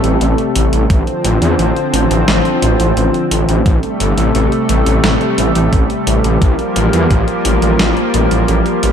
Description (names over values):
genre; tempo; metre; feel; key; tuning
synthwave; 87 BPM; 4/4; straight; A phrygian; A4 = 441 Hz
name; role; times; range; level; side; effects
lush unison pad; sustained chords; 0.0-8.9 s; C3 to C4; -15 LUFS; equal; chorus, sidechain pumping
wide detuned saw bass; bass; 0.0-8.9 s; G1 to E2; -14 LUFS; equal; chorus, tube saturation
clean 12-bit digital drum machine; drums; 0.0-8.9 s; hi-hat, snare drum; -20 LUFS; equal; none
electronic kick drum; drums; 0.9-7.2 s; none; -13 LUFS; equal; none
room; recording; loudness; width
moderate lush hall reverb, RT60 2.4 s; dark, warm production; -11 LUFS; side -8 dB against mid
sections
0.0-8.9 A section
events
none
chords
0.0 Am7; 0.9 Dm7/A; 3.7 Am7; 6.4 Gm7/A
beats
0.21 | 0.90 1.59 2.28 2.97 | 3.66 4.35 5.04 5.73 | 6.42 7.11 7.80 8.48